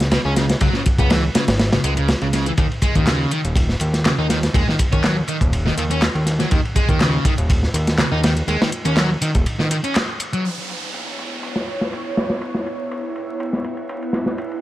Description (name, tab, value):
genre	breakbeat, breaks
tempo	122 BPM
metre	4/4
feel	swing 53% on 16ths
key	C# minor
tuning	A4 = 440 Hz
part	fat analog bass	bass	0.0-9.5 s	D#1 to D#2	-20 LUFS	equal	none
part	crunchy breakbeat drum kit	drums	0.0-14.6 s	kick drum, ride cymbal, snare drum	-20 LUFS	equal	low-pass filter on kick, low-pass filter on cymbals, low-pass filter on snare, low-pass filter on room
part	house drum kit	drums	0.0-10.4 s	handclaps, hi-hat	-27 LUFS	left 1 dB	none
part	sludgy distorted guitar	riff	0.1-10.4 s	B2 to D#4	-23 LUFS	equal	overdrive, tape echo
part	lush unison pad	sustained chords	11.0-14.6 s	B3 to C#5	-26 LUFS	right 1 dB	chorus, sidechain pumping
part	downlifter	sound effects	10.4-14.4 s	none	-32 LUFS	right 2 dB	none
room	small room ambience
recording	vinyl crackle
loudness	-17 LUFS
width	side -15 dB against mid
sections	0.0-10.4 A section; 10.4-14.6 B section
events	break 9.5-10.4; band accent 10.0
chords	0.0 C#5; 2.6 D#7(no3); 10.4 C#m7